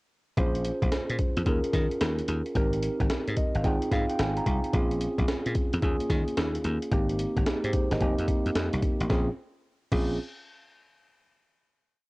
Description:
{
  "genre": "R&B, new jack swing",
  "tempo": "110 BPM",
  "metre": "4/4",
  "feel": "swing 65% on 16ths",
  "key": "Bb dorian",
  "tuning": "A4 = 439 Hz",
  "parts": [
    { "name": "mellow tine electric piano", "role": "accompaniment", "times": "0.4-10.2 s", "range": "Bb3 to Bb5", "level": "-29 LUFS", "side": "right 1 dB", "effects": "cassette tape" },
    { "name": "dry thumbed slap bass", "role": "bass", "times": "0.4-10.2 s", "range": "F1 to Eb3", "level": "-29 LUFS", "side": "equal", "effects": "none" },
    { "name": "breakbeat sampler-style drum kit", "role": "drums", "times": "0.4-10.1 s", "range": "crash cymbal, hi-hat, kick drum, snare drum", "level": "-28 LUFS", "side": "equal", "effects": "cassette tape" }
  ],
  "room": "little or no reverb",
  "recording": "home recording on cassette",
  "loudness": "-25 LUFS",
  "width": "side -23 dB against mid",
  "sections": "0.4-9.1 verse; 9.1-11.3 final chord",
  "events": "tine electric piano fill 3.1-4.7",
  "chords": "0.4 Bbm9; 1.5 Eb9sus4; 2.6 Abmaj9; 4.7 Bbm9; 5.8 Eb9sus4; 6.9 Abmaj9; 8.0 F9sus4; 9.1 Bbm9"
}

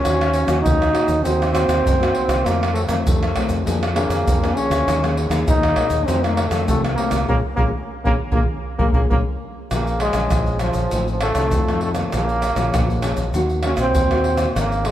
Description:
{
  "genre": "samba and choro",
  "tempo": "99 BPM",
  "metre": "4/4",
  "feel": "straight",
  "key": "Bb minor",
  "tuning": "A4 = 440 Hz",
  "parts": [
    { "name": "warm trombone", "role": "melody", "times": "0.0-14.9 s", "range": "F3 to Eb4", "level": "-22 LUFS", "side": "right 1 dB", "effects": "none" },
    { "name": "nylon-string guitar", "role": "accompaniment", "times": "0.0-14.9 s", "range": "F2 to Ab4", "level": "-24 LUFS", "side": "left 3 dB", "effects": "none" },
    { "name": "fingered electric bass", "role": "bass", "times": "0.1-14.9 s", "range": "Ab1 to Gb2", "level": "-23 LUFS", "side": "equal", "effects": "none" },
    { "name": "egg shaker, surdo, pandeiro and tamborim", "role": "percussion", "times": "0.1-14.9 s", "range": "none", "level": "-22 LUFS", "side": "equal", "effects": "none" }
  ],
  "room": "moderate plate reverb, RT60 3.4 s",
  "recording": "heard from further back in the room",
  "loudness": "-17 LUFS",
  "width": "side -12 dB against mid",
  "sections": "0.0-9.7 A section; 9.7-14.9 B section",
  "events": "band accent 7.3-9.7",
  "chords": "0.0 Ebm7; 1.3 Cm7b5/Eb; 2.5 F7; 3.7 Bb7/F; 4.9 Ebsus4; 6.1 F7; 7.3 Bbm7; 10.9 F7/A; 12.1 Bbm7; 13.3 Ebm"
}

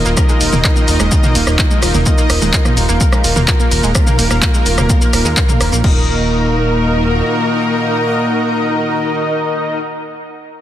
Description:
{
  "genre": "melodic techno",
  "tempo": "127 BPM",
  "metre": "4/4",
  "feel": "straight",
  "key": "Eb minor",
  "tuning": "A4 = 440 Hz",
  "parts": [
    { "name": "fat analog lead", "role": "melody", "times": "0.0-9.8 s", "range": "Bb3 to Eb4", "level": "-21 LUFS", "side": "equal", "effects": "chorus, sidechain pumping, tape echo" },
    { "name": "soft supersaw", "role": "second line", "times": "0.0-9.8 s", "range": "Bb4 to Eb5", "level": "-24 LUFS", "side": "equal", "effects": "sidechain pumping, dub echo" },
    { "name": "dark chamber string section", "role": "sustained chords", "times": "0.0-9.8 s", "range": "Eb3 to Bb4", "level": "-25 LUFS", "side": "equal", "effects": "vintage 12-bit sampler grit, sidechain pumping" },
    { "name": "analog synth brass", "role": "stabs", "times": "0.0-9.8 s", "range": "Bb3 to Eb5", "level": "-22 LUFS", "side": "left 1 dB", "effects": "chorus, sidechain pumping, dub echo" },
    { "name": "fat analog bass", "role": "bass", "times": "0.0-7.2 s", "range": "Eb1 to Eb2", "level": "-17 LUFS", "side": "equal", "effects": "sidechain pumping" },
    { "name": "granular cloud pad", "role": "texture", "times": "0.4-10.0 s", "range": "Eb4 to Bb5", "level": "-24 LUFS", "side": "right 1 dB", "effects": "built-in reverb, sidechain pumping" },
    { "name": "analog pluck", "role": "arpeggios", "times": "0.1-6.1 s", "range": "Ab3 to Bb4", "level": "-23 LUFS", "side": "right 2 dB", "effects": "chorus, sidechain pumping, dub echo" },
    { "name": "punchy analog drum machine", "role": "drums", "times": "0.1-5.9 s", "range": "crash cymbal, handclaps, hi-hat, rim click, shaker, toms", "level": "-17 LUFS", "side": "equal", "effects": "none" },
    { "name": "electronic kick drum", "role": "drums", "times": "0.2-5.9 s", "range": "none", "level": "-14 LUFS", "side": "equal", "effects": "none" }
  ],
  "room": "light reverb",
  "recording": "dense, heavily limited modern master",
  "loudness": "-11 LUFS",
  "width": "side -12 dB against mid",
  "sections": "0.0-5.8 A section; 5.8-9.6 B section",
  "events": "drop 0.0-5.8",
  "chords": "0.0 Bbsus4/Eb; 5.8 Ebm"
}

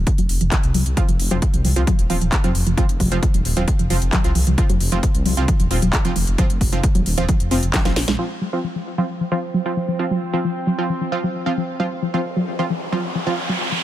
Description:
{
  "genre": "driving peak-time techno",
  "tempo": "133 BPM",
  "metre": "4/4",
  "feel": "straight",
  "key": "unclear",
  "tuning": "A4 = 440 Hz",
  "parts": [
    { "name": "dark detuned saw bass", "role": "bass", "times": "0.0-8.2 s", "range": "Eb1 to C2", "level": "-20 LUFS", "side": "equal", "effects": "sidechain pumping" },
    { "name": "electronic kick drum", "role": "drums", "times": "0.1-7.8 s", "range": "none", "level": "-18 LUFS", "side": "equal", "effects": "overdrive" },
    { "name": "techno drum kit", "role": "drums", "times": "0.1-8.2 s", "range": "handclaps, hi-hat, snare drum", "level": "-26 LUFS", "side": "equal", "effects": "overdrive, low-pass filter on hats, low-pass filter on snare" },
    { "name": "warbly dusty pluck", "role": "riff", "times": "0.2-13.8 s", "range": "F3 to C4", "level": "-24 LUFS", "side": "left 1 dB", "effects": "chorus, sidechain pumping, ping-pong delay" },
    { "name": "supersaw stab", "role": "stabs", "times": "1.0-13.3 s", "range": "F3 to F4", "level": "-26 LUFS", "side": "right 3 dB", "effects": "sidechain pumping, low-pass filter, ping-pong delay" },
    { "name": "analog drone", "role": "drone", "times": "8.7-13.6 s", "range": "F3 to C4", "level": "-28 LUFS", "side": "right 2 dB", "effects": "chorus, sidechain pumping" },
    { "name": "riser", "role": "sound effects", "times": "12.2-13.8 s", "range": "none", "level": "-26 LUFS", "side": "equal", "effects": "none" }
  ],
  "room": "digital ambience",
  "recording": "none",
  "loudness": "-17 LUFS",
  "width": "side -13 dB against mid",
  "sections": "0.0-8.2 A section; 8.2-13.8 B section",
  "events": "drum fill 7.7-8.2; filter sweep on synth arpeggio sound 8.2-13.8; filter sweep on supersaw synth 8.2-13.8; riser 12.2-13.8",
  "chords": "0.0 F5"
}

